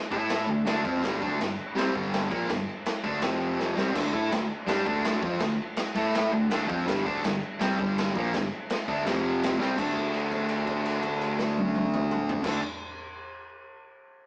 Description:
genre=garage rock duo or trio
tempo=165 BPM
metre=4/4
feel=straight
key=unclear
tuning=A4 = 440 Hz
part: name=fuzz guitar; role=riff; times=0.1-12.6 s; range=F2 to A4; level=-26 LUFS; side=equal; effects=distortion
part: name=picked electric bass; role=bass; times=0.1-12.6 s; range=F1 to A2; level=-37 LUFS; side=equal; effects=overdrive
part: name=raw garage drum kit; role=drums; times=0.1-12.5 s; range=crash cymbal, kick drum, snare drum, toms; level=-31 LUFS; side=equal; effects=none
room=wet stone room reverb, RT60 1.2 s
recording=rough rehearsal-room recording, warm saturation, small speaker sound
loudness=-25 LUFS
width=side -34 dB against mid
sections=0.0-3.9 A section; 3.9-9.8 A section; 9.8-12.7 B section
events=drum fill 3.6-3.9, 9.6; held note 9.8-12.4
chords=0.1 A5; 0.5 D5; 1.0 G5; 3.2 F5; 3.8 C5; 3.9 D5; 6.0 A5; 6.3 D5; 6.9 G5; 9.0 F5; 9.6 C5; 9.8 D5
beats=0.29 0.66 | 1.02 1.39 1.76 2.12 | 2.49 2.85 3.22 3.58 | 3.95 4.31 4.68 5.04 | 5.41 5.77 6.14 6.50 | 6.86 7.23 7.59 7.95 | 8.32 8.68 9.04 9.40 | 9.77 10.13 10.49 10.85 | 11.21 11.57 11.93 12.29

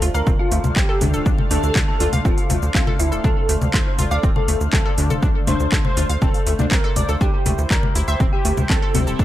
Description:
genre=melodic techno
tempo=121 BPM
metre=4/4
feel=straight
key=D minor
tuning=A4 = 441 Hz
part: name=sweeping resonant pad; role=sustained chords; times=0.0-9.2 s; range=A3 to F5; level=-31 LUFS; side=right 1 dB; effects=chorus, vintage 12-bit sampler grit, sidechain pumping
part: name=analog pluck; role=arpeggios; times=0.0-9.2 s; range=A3 to F5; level=-29 LUFS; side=equal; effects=chorus, cassette tape, sidechain pumping, tape echo
part: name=tight sequencer bass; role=bass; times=0.0-9.2 s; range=D1 to D2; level=-22 LUFS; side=equal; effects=sidechain pumping
part: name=house drum kit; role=drums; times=0.0-9.2 s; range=congas, handclaps, hi-hat, shaker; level=-24 LUFS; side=left 2 dB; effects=overdrive, sidechain pumping on perc, sidechain pumping on hats
part: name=analog synth brass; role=melody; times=0.1-8.9 s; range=E4 to D5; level=-27 LUFS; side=left 1 dB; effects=chorus, sidechain pumping, tape echo
part: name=dark detuned synth bell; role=second line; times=0.1-8.9 s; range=E5 to D6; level=-32 LUFS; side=right 2 dB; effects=chorus, sidechain pumping, tape echo
part: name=electronic kick drum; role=drums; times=0.3-9.2 s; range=none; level=-20 LUFS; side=equal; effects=overdrive
part: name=synth brass stab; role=stabs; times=1.0-9.2 s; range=C3 to D4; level=-26 LUFS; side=left 2 dB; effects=chorus, sidechain pumping, tape echo
room=digital ambience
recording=echo-heavy mix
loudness=-16 LUFS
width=side -14 dB against mid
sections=0.0-9.2 A section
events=none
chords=0.0 Dm7; 7.2 C/D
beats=0.27 0.76 | 1.26 1.75 2.25 2.75 | 3.24 3.74 4.24 4.73 | 5.23 5.72 6.22 6.71 | 7.21 7.71 8.20 8.70 | 9.19

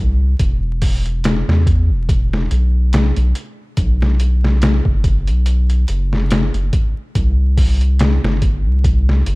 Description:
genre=trip hop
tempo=71 BPM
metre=4/4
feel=swing 56% on 16ths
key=E minor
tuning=A4 = 440 Hz
part: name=round analog bass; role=bass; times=0.0-9.4 s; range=E1 to E2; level=-15 LUFS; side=equal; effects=none
part: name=trip hop sampler-style drum kit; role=drums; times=0.4-9.4 s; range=hi-hat, kick drum, snare drum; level=-17 LUFS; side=equal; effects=small room reverb
room=little or no reverb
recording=dark, warm production, vinyl crackle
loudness=-13 LUFS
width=side -24 dB against mid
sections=0.0-9.4 A section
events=none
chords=none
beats=| 0.39 1.24 2.08 2.93 | 3.77 4.62 5.46 6.31 | 7.15 8.00 8.84

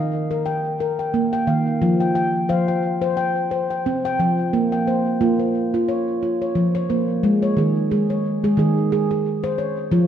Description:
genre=world meditative, meditative tuned percussion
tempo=89 BPM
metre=4/4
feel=swing 55% on 16ths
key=unclear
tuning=A4 = 439 Hz
part: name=handpan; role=solo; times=0.0-10.1 s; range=Eb3 to G5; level=-18 LUFS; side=equal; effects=diffuse ambient delay
room=wet echo chamber reverb, RT60 1.9 s, small room reverb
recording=dark, warm production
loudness=-18 LUFS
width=side -9 dB against mid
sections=0.0-7.2 A section; 7.2-10.1 B section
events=none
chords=0.0 Eb; 1.8 F5; 4.5 Bbm; 7.2 Ab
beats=0.47 1.14 | 1.82 2.50 3.18 3.86 | 4.53 5.21 5.89 6.56 | 7.24 7.91 8.58 9.26 | 9.93

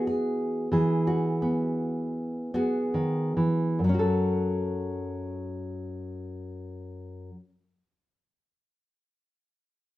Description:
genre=folk, solo fingerstyle acoustic guitar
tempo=68-93 BPM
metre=4/4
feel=straight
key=F# minor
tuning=A4 = 440 Hz
part: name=nylon-string guitar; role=solo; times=0.0-7.5 s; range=F#2 to A4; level=-26 LUFS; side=equal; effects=none
room=moderate large studio reverb, RT60 0.8 s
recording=band playing live in one room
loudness=-25 LUFS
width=side -16 dB against mid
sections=0.0-3.8 A section; 3.8-7.3 B section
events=slowing down 0.0-3.8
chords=0.0 Eadd9; 3.8 F#m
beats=0.05 | 0.71 1.39 2.13 2.93 | 3.79 4.66 5.53 6.40

